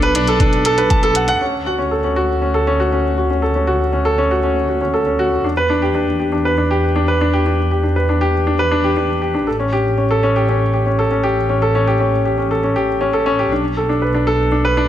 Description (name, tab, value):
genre	piano and strings electronica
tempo	119 BPM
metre	4/4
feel	straight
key	unclear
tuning	A4 = 440 Hz
part	clear grand piano	riff	0.0-14.9 s	C#4 to A5	-16 LUFS	equal	digital delay
part	dark symphonic double bass section	bass	0.0-14.9 s	A1 to E2	-20 LUFS	equal	sidechain pumping
part	electronic hi-hat	drums	0.0-1.4 s	none	-24 LUFS	left 1 dB	none
part	electronic kick drum	drums	0.4-1.0 s	none	-16 LUFS	equal	none
room	light reverb, small room reverb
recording	none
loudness	-14 LUFS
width	side -11 dB against mid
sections	0.0-1.4 A section; 1.4-14.9 B section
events	none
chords	0.0 Bm7; 1.4 Dmaj7; 5.4 Em7; 9.5 A7; 13.5 Bm7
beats	0.40 0.90 | 1.41 1.91 2.42 2.92 | 3.42 3.93 4.43 4.94 | 5.44 5.95 6.45 6.95 | 7.46 7.96 8.47 8.97 | 9.47 9.98 10.48 10.99 | 11.49 11.99 12.50 13.00 | 13.51 14.01 14.52